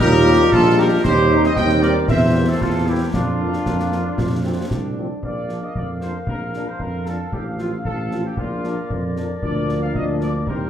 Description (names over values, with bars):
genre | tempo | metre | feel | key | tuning
military-style march for wind band | 115 BPM | 2/4 | straight | Bb major | A4 = 440 Hz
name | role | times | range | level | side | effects
warm trumpet section | melody | 0.0-10.7 s | F4 to G5 | -25 LUFS | right 1 dB | none
mellow woodwind section | second line | 0.0-10.7 s | D4 to F5 | -27 LUFS | left 1 dB | none
warm euphonium | second line | 0.0-4.9 s | C4 to F4 | -22 LUFS | equal | none
warm trombone section | sustained chords | 0.0-5.2 s | G3 to F4 | -27 LUFS | right 2 dB | none
mellow tuba | bass | 0.0-10.7 s | A1 to F2 | -21 LUFS | right 1 dB | none
concert snare drum, concert bass drum and clash cymbals | drums | 0.0-10.7 s | none | -25 LUFS | equal | none
dark French horn section | accompaniment | 0.3-10.7 s | F3 to G4 | -29 LUFS | left 2 dB | none
room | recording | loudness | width
wet large studio reverb, RT60 1.2 s | heard from further back in the room | -17 LUFS | side -9 dB against mid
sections
0.0-5.2 A section; 5.2-10.7 B section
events
none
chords
0.0 Eb; 1.1 Cm/Eb; 2.1 C7/E; 3.1 Bb/F; 4.2 F; 5.2 Bb; 7.3 F/A; 8.4 Bb; 9.4 Bb/D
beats
| 0.00 0.53 | 1.05 1.57 | 2.10 2.62 | 3.14 3.67 | 4.19 4.71 | 5.24 5.76 | 6.28 6.81 | 7.33 7.86 | 8.38 8.90 | 9.43 9.95 | 10.47